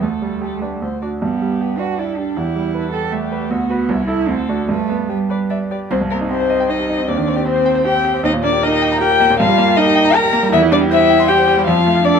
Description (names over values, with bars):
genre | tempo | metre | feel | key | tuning
quick classical-period movement for piano trio | 156 BPM | 3/4 | rubato | G major, C minor from 5.9 s | A4 = 437 Hz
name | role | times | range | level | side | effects
muted violin | melody | 0.0-12.2 s | E4 to Bb5 | -18 LUFS | left 8 dB | none
muted cello | second line | 0.0-12.2 s | G3 to Bb4 | -20 LUFS | right 7 dB | none
bright concert grand piano | accompaniment | 0.0-12.2 s | C2 to C6 | -18 LUFS | right 1 dB | none
room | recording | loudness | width
light reverb | none | -14 LUFS | side -6 dB against mid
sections
0.0-5.9 A section; 5.9-12.2 B section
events
none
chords
0.0 Dsus4; 0.8 D; 1.2 G; 2.4 Em; 3.5 Bm/D; 3.9 Am/C; 4.3 D7; 4.7 G; 5.9 Cm; 7.1 Cm/Eb; 8.2 Eb; 9.4 Eb/G; 10.5 C/E; 11.7 Dm/F